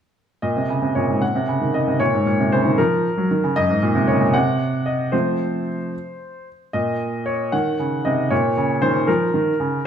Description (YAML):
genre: classical-period piano sonatina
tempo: 77 BPM (dotted quarters)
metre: 6/8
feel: straight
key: Bb minor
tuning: A4 = 440 Hz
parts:
  - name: clear baby grand piano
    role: solo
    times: 0.4-9.9 s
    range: Gb2 to Gb5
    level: -18 LUFS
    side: equal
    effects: none
room: wet recital hall reverb, RT60 1.4 s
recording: none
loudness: -18 LUFS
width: side -8 dB against mid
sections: 0.4-9.9 A section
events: none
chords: 0.4 Bbm; 1.2 Ebm/Bb; 2.0 Bbm; 3.6 Gb; 4.3 N.C.; 5.1 F; 6.7 N.C.; 7.5 Ebm; 8.3 Bbm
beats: | 0.43 1.22 | 2.01 2.79 | 3.57 4.35 | 5.13 5.93 | 6.74 7.53 | 8.32 9.08